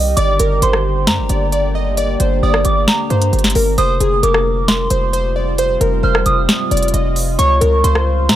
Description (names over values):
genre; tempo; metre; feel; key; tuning
hip hop, trap; 133 BPM; 4/4; half-time; unclear; A4 = 436 Hz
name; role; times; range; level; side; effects
glassy digital keys; melody; 0.0-8.4 s; Ab4 to Eb5; -19 LUFS; equal; chorus, digital delay
deep dark ambient pad; sustained chords; 0.0-8.4 s; C3 to G4; -23 LUFS; equal; chorus, built-in reverb
hard-hitting 808-style bass; bass; 0.0-8.4 s; F1 to Db3; -16 LUFS; equal; none
soft synth bell; second line; 0.2-8.4 s; Bb5 to F6; -20 LUFS; right 2 dB; chorus, tremolo, digital delay
trap drum kit; drums; 0.2-8.4 s; hi-hat, rim click, snare drum; -17 LUFS; equal; overdrive
room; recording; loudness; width
digital ambience; none; -12 LUFS; side -12 dB against mid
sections
0.0-8.4 A section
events
none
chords
0.2 Gm; 3.8 Fsus2; 7.4 Db